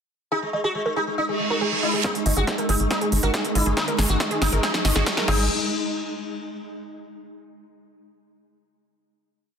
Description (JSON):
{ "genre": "psychedelic trance", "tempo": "139 BPM", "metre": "4/4", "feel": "straight", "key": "unclear", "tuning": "A4 = 440 Hz", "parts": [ { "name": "sitar", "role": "melody", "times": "0.3-5.4 s", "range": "G#3 to F#4", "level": "-27 LUFS", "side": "left 1 dB", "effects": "phaser, sidechain pumping, ping-pong delay" }, { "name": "swarming drone", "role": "sustained chords", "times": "0.8-5.3 s", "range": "G#3 to D#4", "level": "-29 LUFS", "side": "equal", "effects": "built-in reverb, sidechain pumping" }, { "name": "wide unison pluck", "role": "riff", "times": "0.3-5.5 s", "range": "G#4 to D#5", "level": "-29 LUFS", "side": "equal", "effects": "auto-pan, vintage 12-bit sampler grit, sidechain pumping, tape echo" }, { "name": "reverse cymbal and riser", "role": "sound effects", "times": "1.3-5.5 s", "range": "none", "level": "-30 LUFS", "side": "right 3 dB", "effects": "none" }, { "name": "big-room dance drum kit", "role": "drums", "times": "2.0-5.4 s", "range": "crash cymbal, hi-hat, snare drum", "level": "-26 LUFS", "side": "equal", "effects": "overdrive, high-pass filter on snare, low-pass filter on snare, high-pass filter on hats, low-pass filter on hats, high-pass filter on cymbals, low-pass filter on cymbals, high-pass filter on room, low-pass filter on room" }, { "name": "electronic kick drum", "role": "drums", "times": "2.0-5.4 s", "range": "none", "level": "-30 LUFS", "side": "equal", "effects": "overdrive, high-pass filter on kick, high-pass filter on room" }, { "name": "tight sequencer bass", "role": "bass", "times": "2.3-5.5 s", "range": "G#1", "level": "-22 LUFS", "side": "equal", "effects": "none" } ], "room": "moderate digital room reverb, RT60 1.0 s, digital ambience", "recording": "dense, heavily limited modern master", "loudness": "-20 LUFS", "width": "side -7 dB against mid", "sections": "0.3-2.0 intro; 2.0-5.5 build; 5.5-7.2 final hit", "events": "reverse cymbal 1.3-2.0; build-up 2.0-5.5; drum fill 2.0-5.5; riser 2.0-5.5; filter sweep on synth arpeggio sound 2.0-5.5", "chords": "0.3 G#5; 5.5 N.C." }